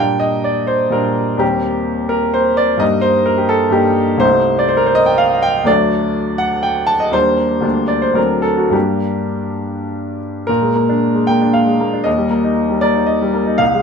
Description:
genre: classical, romantic character piece for solo piano.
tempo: 98-133 BPM.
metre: 3/4.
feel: rubato.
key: unclear.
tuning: A4 = 440 Hz.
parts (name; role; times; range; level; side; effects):
clear grand piano; solo; 0.0-13.8 s; C2 to A5; -13 LUFS; equal; none.
room: light reverb.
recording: minimal, uncompressed stereo recording.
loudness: -13 LUFS.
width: side -6 dB against mid.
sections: 0.0-10.5 A section; 10.5-13.8 B section.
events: none.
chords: 0.0 Gm/Bb; 1.4 Eb6; 2.8 Eb/G; 4.2 Am7b5/C; 5.7 D; 7.1 Ebmaj7; 7.6 Gm/D; 8.2 D7; 8.7 Gm; 10.5 Bb7; 12.1 Eb.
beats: 0.46 0.94 | 1.42 1.87 2.34 | 2.81 3.27 3.74 | 4.22 4.70 5.19 | 5.68 6.17 6.65 | 7.14 7.64 8.17 | 8.74 9.34 9.91 | 10.48 11.01 11.54 | 12.06 12.57 13.08 | 13.61.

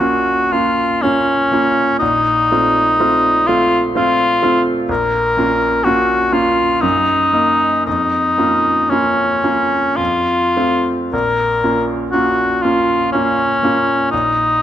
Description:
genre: classical, romantic duo for cor anglais and grand piano.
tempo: 50-64 BPM.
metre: 3/4.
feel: rubato.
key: Bb minor.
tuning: A4 = 440 Hz.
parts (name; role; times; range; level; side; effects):
mellow cor anglais; melody; 0.0-14.6 s; Db4 to Bb4; -14 LUFS; left 1 dB; none.
bright grand piano; accompaniment; 0.0-14.6 s; Bb1 to F4; -18 LUFS; right 2 dB; none.
room: moderate recital hall reverb, RT60 1.7 s.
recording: close, detailed microphones.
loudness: -13 LUFS.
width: side -11 dB against mid.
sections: 0.0-14.6 A section.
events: none.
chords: 0.0 Bbm; 2.0 F7/Bb; 4.9 Bbm; 6.8 Ebm/Gb; 7.9 Bbm/F; 10.0 F; 11.1 Bbm; 14.1 N.C..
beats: 0.01 1.03 | 2.01 2.98 3.94 | 4.89 5.85 6.83 | 7.86 8.91 9.99 | 11.12 12.13 13.12 | 14.12.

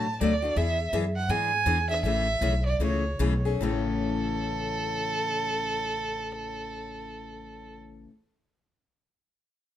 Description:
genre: acoustic string swing (jazz manouche).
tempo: 142-167 BPM.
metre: 4/4.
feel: swing 61% on 8ths.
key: A major.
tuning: A4 = 444 Hz.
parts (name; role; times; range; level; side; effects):
warm violin; melody; 0.0-7.7 s; A4 to A5; -29 LUFS; right 3 dB; none.
picked steel-string acoustic guitar; accompaniment; 0.0-8.1 s; A2 to G#4; -31 LUFS; left 5 dB; none.
upright bass; bass; 0.0-8.0 s; A1 to A2; -30 LUFS; equal; none.
room: moderate studio reverb, RT60 0.6 s.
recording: none.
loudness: -25 LUFS.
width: side -11 dB against mid.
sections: 0.0-3.6 A section; 3.6-7.0 B section.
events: slowing down 0.6-3.6.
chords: 0.0 Bm7; 0.6 E7; 2.0 Amaj7; 3.6 A.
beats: 0.20 | 0.56 0.92 1.29 1.65 | 2.03 2.41 2.80 3.20 | 3.62 4.04 4.46 4.88 | 5.30 5.72 6.15 6.57.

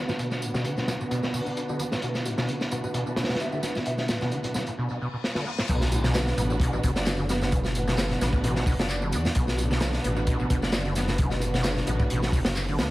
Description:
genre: breakbeat, breaks.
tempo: 131 BPM.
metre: 4/4.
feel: swing 54% on 16ths.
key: B minor.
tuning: A4 = 440 Hz.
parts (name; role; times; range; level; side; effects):
percussive tonewheel organ; sustained chords; 0.0-12.9 s; D3 to F#4; -36 LUFS; right 1 dB; none.
dark symphonic string section; stabs; 0.0-12.9 s; B3 to D5; -33 LUFS; right 1 dB; low-pass filter, tape echo.
overdriven acid bass; riff; 0.1-12.8 s; A2 to B3; -31 LUFS; equal; ensemble chorus, tape echo.
crunchy breakbeat drum kit; drums; 0.1-12.9 s; crash cymbal, hi-hat, kick drum, snare drum; -28 LUFS; equal; low-pass filter on kick, low-pass filter on hats, low-pass filter on cymbals, low-pass filter on snare, low-pass filter on room, tape echo.
electronic tambourine and handclaps; drums; 0.1-12.9 s; none; -39 LUFS; right 1 dB; tape echo.
bongos and congas; percussion; 0.3-12.9 s; none; -37 LUFS; left 2 dB; none.
baroque flute; melody; 3.4-4.0 s; E5; -37 LUFS; equal; small speaker sound, vintage 12-bit sampler grit, tape echo.
reverse cymbal and impact; sound effects; 5.0-7.5 s; none; -39 LUFS; left 2 dB; none.
detuned saw bass; bass; 5.7-12.9 s; F#1 to E2; -28 LUFS; equal; none.
room: light reverb, small room reverb.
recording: echo-heavy mix, vinyl crackle.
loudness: -24 LUFS.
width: side -17 dB against mid.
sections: 0.0-5.7 A section; 5.7-12.9 B section.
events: reverse cymbal 5.0-5.7; drum fill 5.2-5.7; drop 5.7-12.9; impact 5.7-7.5.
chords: 0.0 Bm.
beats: | 0.19 0.65 1.11 1.57 | 2.03 2.48 2.94 3.40 | 3.86 4.32 4.77 5.23 | 5.69 6.15 6.61 7.06 | 7.52 7.98 8.44 8.90 | 9.35 9.81 10.27 10.73 | 11.19 11.64 12.10 12.56.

